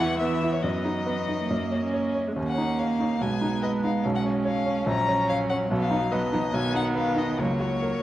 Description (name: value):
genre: quick classical-period movement for piano quartet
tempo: 142 BPM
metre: 4/4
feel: straight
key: F# major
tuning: A4 = 440 Hz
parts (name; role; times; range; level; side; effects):
- rich violin; melody; 0.0-8.0 s; C#5 to A#5; -30 LUFS; left 4 dB; none
- rich cello; second line; 0.0-8.0 s; D#3 to A#3; -29 LUFS; right 4 dB; none
- clear baby grand piano; accompaniment; 0.0-8.0 s; A#1 to C#5; -27 LUFS; equal; none
- rich viola; accompaniment; 0.0-8.0 s; G#3 to C#4; -31 LUFS; right 1 dB; none
room: moderate concert hall reverb, RT60 1.8 s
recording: worn, warbling old tape, cassette tape, warbly pitch drift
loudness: -23 LUFS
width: side -14 dB against mid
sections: 0.0-8.0 A section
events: none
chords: 0.0 E5; 0.6 B/F#; 1.5 F#; 2.4 D#5; 3.2 G#m/B; 4.0 C#7/B; 4.9 F#/A#; 5.7 B; 7.4 F#/C#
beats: 0.20 | 0.63 1.07 1.51 1.94 | 2.37 2.79 3.21 3.63 | 4.04 4.46 4.87 5.29 | 5.71 6.12 6.54 6.96 | 7.39 7.83